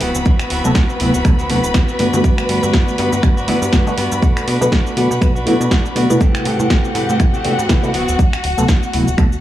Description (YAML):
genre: filtered disco house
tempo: 121 BPM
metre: 4/4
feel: swing 57% on 16ths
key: unclear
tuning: A4 = 438 Hz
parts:
  - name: warm studio string section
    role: sustained chords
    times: 0.0-9.4 s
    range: F#4 to B5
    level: -23 LUFS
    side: left 2 dB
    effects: vintage 12-bit sampler grit, sidechain pumping
  - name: direct-recorded clean electric guitar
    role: riff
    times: 0.0-8.2 s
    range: E3 to G4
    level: -22 LUFS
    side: right 1 dB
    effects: sidechain pumping
  - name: plucky analog bass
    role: bass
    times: 0.0-9.4 s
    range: D1 to B2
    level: -22 LUFS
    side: equal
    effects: tube saturation, sidechain pumping
  - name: punchy analog drum machine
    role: drums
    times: 0.0-9.4 s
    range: finger snaps, hi-hat, shaker, snare drum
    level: -23 LUFS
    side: equal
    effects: overdrive, sidechain pumping on hats, sidechain pumping on perc, sidechain pumping on cymbals
  - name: electronic kick drum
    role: drums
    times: 0.3-9.3 s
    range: none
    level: -14 LUFS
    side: equal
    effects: none
  - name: overdriven reed electric piano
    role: accompaniment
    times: 0.6-9.3 s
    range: C3 to B4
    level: -19 LUFS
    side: equal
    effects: fast tremolo, phaser, vintage 12-bit sampler grit, sidechain pumping
room: digital ambience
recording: dry, gritty hardware recording, small room ambience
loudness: -13 LUFS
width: side -13 dB against mid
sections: 0.0-9.4 A section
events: none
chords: 0.0 D13; 2.0 Gmaj7; 4.2 Bm7; 6.2 Am7; 7.9 D13